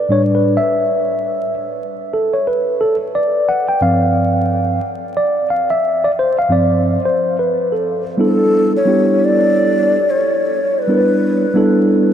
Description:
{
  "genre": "hip hop",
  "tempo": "89 BPM",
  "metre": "4/4",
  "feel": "swing 58% on 16ths",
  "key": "unclear",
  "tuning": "A4 = 440 Hz",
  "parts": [
    { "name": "mellow tine electric piano", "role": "accompaniment", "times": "0.0-12.1 s", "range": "G2 to G5", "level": "-14 LUFS", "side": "equal", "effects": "none" },
    { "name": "breathy bass bansuri", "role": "melody", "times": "8.3-12.1 s", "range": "A4 to D5", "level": "-15 LUFS", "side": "left 1 dB", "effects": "tape echo" }
  ],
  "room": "wet huge ambient reverb, RT60 7.8 s",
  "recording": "dreamy mix soaked in reverb, vinyl crackle",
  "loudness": "-13 LUFS",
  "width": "side -9 dB against mid",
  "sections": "0.0-8.2 A section; 8.2-12.1 B section",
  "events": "tine electric piano solo 0.0-8.2",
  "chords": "0.0 A9sus4; 2.8 G7sus4; 8.2 A9sus4"
}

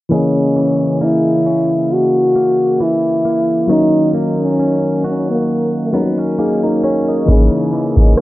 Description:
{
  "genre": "contemporary R&B",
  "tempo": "67 BPM",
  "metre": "4/4",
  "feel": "swing 54% on 16ths",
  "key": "C# dorian",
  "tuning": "A4 = 440 Hz",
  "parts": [
    { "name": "mellow French horn", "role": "melody", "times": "0.1-6.1 s", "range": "A#3 to F#4", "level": "-15 LUFS", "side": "left 1 dB", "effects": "none" },
    { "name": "soft electric-piano-like synth keys", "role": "accompaniment", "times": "0.1-8.2 s", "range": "E3 to D#5", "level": "-17 LUFS", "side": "left 1 dB", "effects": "chorus" },
    { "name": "direct-recorded clean electric guitar", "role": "arpeggios", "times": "0.1-8.2 s", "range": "C#3 to F#4", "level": "-21 LUFS", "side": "right 4 dB", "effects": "spring reverb" },
    { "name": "booming analog drum machine", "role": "drums", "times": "7.3-8.2 s", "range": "kick drum, rim click", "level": "-10 LUFS", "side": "equal", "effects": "none" }
  ],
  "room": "light reverb",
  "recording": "worn, warbling old tape, cassette tape, warbly pitch drift, low-pass filter",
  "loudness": "-12 LUFS",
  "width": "side -17 dB against mid",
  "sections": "0.1-8.2 A section",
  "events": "none",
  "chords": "0.1 C#m69; 3.7 D#m7; 7.3 C#m69"
}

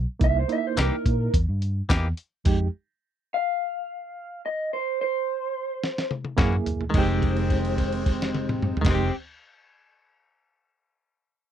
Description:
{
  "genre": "straight-eighth soul blues",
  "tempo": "107 BPM",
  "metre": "4/4",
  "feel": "straight",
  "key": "F minor",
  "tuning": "A4 = 440 Hz",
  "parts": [
    { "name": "vintage muted fingered electric bass", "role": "bass", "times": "0.0-2.7, 6.4-9.1 s", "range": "F1 to Bb2", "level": "-25 LUFS", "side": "equal", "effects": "none" },
    { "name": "electric guitar through a small old amp", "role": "melody", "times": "0.2-9.1 s", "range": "C4 to F5", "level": "-28 LUFS", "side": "equal", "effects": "phaser" },
    { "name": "reed electric piano", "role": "accompaniment", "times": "0.2-2.7, 6.4-9.1 s", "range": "Ab3 to Ab4", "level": "-29 LUFS", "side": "right 8 dB", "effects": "overdrive, fast tremolo" },
    { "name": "lo-fi sampler-style drum kit", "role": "drums", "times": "0.2-9.0 s", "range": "crash cymbal, hi-hat, kick drum, snare drum, tambourine, toms", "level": "-25 LUFS", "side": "equal", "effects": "none" },
    { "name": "direct-recorded clean electric guitar", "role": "stabs", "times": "0.8-2.1, 6.4-9.1 s", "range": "Eb3 to G4", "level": "-30 LUFS", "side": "left 4 dB", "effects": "none" }
  ],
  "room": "little or no reverb",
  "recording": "dry, close 1970s-style studio recording",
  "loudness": "-23 LUFS",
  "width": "side -10 dB against mid",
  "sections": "0.0-6.9 A section; 6.9-9.2 B section",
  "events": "stop 2.5-6.4; drum fill 5.8-6.9; held note 6.9-8.8",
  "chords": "0.2 C7#9; 2.5 Fm9; 6.4 Gb7; 6.9 Fm9"
}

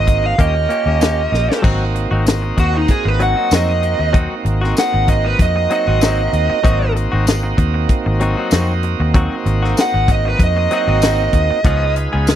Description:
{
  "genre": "straight-eighth soul blues",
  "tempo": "96 BPM",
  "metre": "4/4",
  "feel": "swing 54% on 16ths",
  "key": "Ab mixolydian",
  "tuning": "A4 = 440 Hz",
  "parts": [
    { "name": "smooth overdriven lead guitar", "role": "melody", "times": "0.0-11.9 s", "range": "Eb4 to Gb5", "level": "-18 LUFS", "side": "right 3 dB", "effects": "none" },
    { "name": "bright tonewheel organ", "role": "accompaniment", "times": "0.0-12.4 s", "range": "Ab3 to Cb5", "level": "-22 LUFS", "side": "right 4 dB", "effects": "overdrive, slow rotary speaker" },
    { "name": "vintage muted fingered electric bass", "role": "bass", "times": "0.0-12.4 s", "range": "Ab1 to F2", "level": "-17 LUFS", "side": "equal", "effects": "none" },
    { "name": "direct-recorded clean electric guitar", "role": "stabs", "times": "0.1-12.3 s", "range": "F3 to Ab4", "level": "-24 LUFS", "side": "left 4 dB", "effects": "spring reverb" },
    { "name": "tight funk drum kit", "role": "drums", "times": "0.1-12.4 s", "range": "crash cymbal, hi-hat, kick drum, snare drum, tambourine", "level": "-16 LUFS", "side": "left 1 dB", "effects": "none" }
  ],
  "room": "little or no reverb",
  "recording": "dry, close 1970s-style studio recording",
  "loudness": "-13 LUFS",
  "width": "side -11 dB against mid",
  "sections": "0.0-1.6 A section; 1.6-12.4 B section",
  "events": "drum fill 1.3-1.6; lead electric guitar solo 1.6-12.4",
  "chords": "0.4 Eb7; 1.6 Ab7; 11.6 Db7"
}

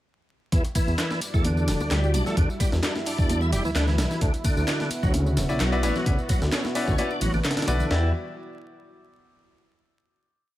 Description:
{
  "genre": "breakbeat, breaks",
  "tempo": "130 BPM",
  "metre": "4/4",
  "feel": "swing 54% on 16ths",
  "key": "E dorian",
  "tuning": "A4 = 440 Hz",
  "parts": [
    { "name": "dark analog pad", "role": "sustained chords", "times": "1.1-8.1 s", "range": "G3 to E5", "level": "-32 LUFS", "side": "equal", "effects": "chorus, sidechain pumping" },
    { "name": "bright tonewheel organ", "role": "riff", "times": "0.5-8.1 s", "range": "C#3 to E4", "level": "-29 LUFS", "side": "equal", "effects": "chorus vibrato, slow rotary speaker, tube saturation, digital delay" },
    { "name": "dark detuned saw bass", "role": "bass", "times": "0.5-8.1 s", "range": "D1 to E2", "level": "-25 LUFS", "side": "equal", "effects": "none" },
    { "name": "breakbeat sampler-style drum kit", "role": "drums", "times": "0.5-8.0 s", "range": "hi-hat, kick drum, snare drum", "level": "-26 LUFS", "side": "equal", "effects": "none" },
    { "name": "garage drum kit", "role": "drums", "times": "0.5-7.9 s", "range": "handclaps, ride cymbal, tambourine", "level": "-34 LUFS", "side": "equal", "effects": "none" },
    { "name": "bongos and congas", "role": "percussion", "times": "0.6-7.9 s", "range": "none", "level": "-36 LUFS", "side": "left 1 dB", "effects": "none" },
    { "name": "bright grand piano", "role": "stabs", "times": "5.5-8.1 s", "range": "E4 to D5", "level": "-30 LUFS", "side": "left 3 dB", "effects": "digital delay" }
  ],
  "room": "little or no reverb",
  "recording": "vinyl crackle",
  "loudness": "-22 LUFS",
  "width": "side -15 dB against mid",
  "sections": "0.5-7.9 drop; 7.9-9.8 final chord",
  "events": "drop 0.5-7.9",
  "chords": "0.5 Em9; 4.2 D69; 7.9 Em9"
}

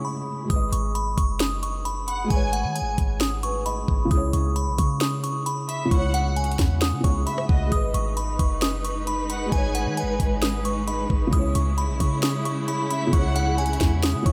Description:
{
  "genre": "hip hop, trap",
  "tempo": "133 BPM",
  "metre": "4/4",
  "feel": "half-time",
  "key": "G# minor",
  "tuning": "A4 = 440 Hz",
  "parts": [
    { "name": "glassy synth bell", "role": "melody", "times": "0.0-14.3 s", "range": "F#5 to D#6", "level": "-31 LUFS", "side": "equal", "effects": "chorus, diffuse ambient delay" },
    { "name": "felt-muted upright piano", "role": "accompaniment", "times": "0.0-14.3 s", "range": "C#3 to F#5", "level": "-32 LUFS", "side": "equal", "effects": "lush chorus" },
    { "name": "warm studio string section", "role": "sustained chords", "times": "0.0-0.5, 7.7-14.3 s", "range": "C#3 to B4", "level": "-33 LUFS", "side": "equal", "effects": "none" },
    { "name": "clean 808-style bass", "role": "bass", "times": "0.5-14.3 s", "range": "F#1 to D#3", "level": "-29 LUFS", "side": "equal", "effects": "none" },
    { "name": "trap drum kit", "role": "drums", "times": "0.5-14.3 s", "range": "hi-hat, kick drum, rim click, snare drum", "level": "-28 LUFS", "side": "equal", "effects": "none" },
    { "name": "rich studio violin section", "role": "second line", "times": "2.1-2.7, 5.7-9.9, 12.9-13.6 s", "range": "D#5 to G#5", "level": "-38 LUFS", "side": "equal", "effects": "diffuse ambient delay" }
  ],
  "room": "moderate cathedral reverb, RT60 4.6 s",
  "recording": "dreamy mix soaked in reverb",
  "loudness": "-24 LUFS",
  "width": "mono",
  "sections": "0.5-14.3 A section",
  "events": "none",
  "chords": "0.0 C#m; 0.5 G#m; 4.1 C#m; 7.7 G#m; 11.3 C#m"
}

